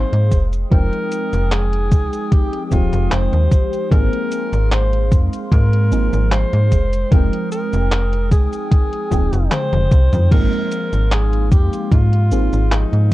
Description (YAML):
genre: vaporwave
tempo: 75 BPM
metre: 4/4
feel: straight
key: Ab major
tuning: A4 = 442 Hz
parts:
  - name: warm alto saxophone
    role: melody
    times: 0.0-13.1 s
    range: Eb4 to C5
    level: -24 LUFS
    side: equal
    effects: tape echo
  - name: FM electric piano with soft pad layer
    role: accompaniment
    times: 0.0-13.1 s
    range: F3 to G5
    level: -24 LUFS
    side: equal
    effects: phaser, analog chorus, cassette tape
  - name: warbly tape-like pad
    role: sustained chords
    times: 0.0-13.1 s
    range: Ab3 to Eb6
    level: -31 LUFS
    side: right 2 dB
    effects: chorus, built-in reverb
  - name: slap-like FM bass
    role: bass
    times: 0.0-13.1 s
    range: Eb1 to Ab2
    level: -16 LUFS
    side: equal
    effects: none
  - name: detuned 8-bit digital drum machine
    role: drums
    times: 0.1-13.1 s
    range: cabasa, crash cymbal, handclaps, hi-hat, toms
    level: -24 LUFS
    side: equal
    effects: overdrive, vintage 12-bit sampler grit
  - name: electronic kick drum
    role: drums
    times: 0.3-13.1 s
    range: none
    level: -14 LUFS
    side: equal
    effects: overdrive, vintage 12-bit sampler grit
room: little or no reverb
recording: dark, warm production, cassette tape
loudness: -14 LUFS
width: side -16 dB against mid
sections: 0.0-10.3 A section; 10.3-13.1 A section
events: drum fill 9.5-10.3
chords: 0.3 Fm9; 3.9 Ab6; 6.7 Fm9; 10.3 Ab6